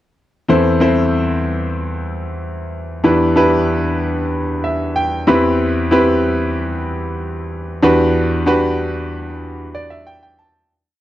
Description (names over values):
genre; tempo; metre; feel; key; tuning
pop; 94 BPM; 4/4; straight; unclear; A4 = 441 Hz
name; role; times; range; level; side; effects
clear concert grand piano; solo; 0.5-10.7 s; E2 to B5; -15 LUFS; equal; none
room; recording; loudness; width
light reverb; dry, close 1970s-style studio recording; -14 LUFS; side -14 dB against mid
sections
0.5-10.7 verse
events
grand piano fill 4.3-5.6, 9.4-10.7; fade-out 8.1-10.7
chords
0.5 Am/E; 3.0 Em7; 5.3 Cmaj7/E; 7.8 Gmaj7/E